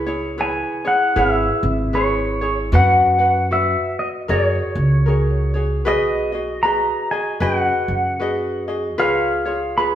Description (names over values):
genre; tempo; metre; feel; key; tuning
Hawaiian; 77 BPM; 4/4; swing 60% on 8ths; B major; A4 = 440 Hz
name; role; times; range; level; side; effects
ukulele; accompaniment; 0.0-9.9 s; E4 to F#5; -22 LUFS; equal; none
upright bass; bass; 0.0-9.9 s; G#1 to F#2; -21 LUFS; right 1 dB; none
pedal steel guitar; melody; 0.4-9.9 s; C#5 to B5; -20 LUFS; left 1 dB; none
room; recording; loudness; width
wet stone room reverb, RT60 1.2 s; band playing live in one room; -16 LUFS; side -10 dB against mid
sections
0.0-9.9 A section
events
none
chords
0.0 C#m7; 2.7 B/F#; 4.3 F#add9; 5.9 B6; 9.0 C#7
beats
0.38 1.16 1.95 | 2.73 3.51 4.29 5.07 | 5.86 6.64 7.42 8.20 | 8.98 9.76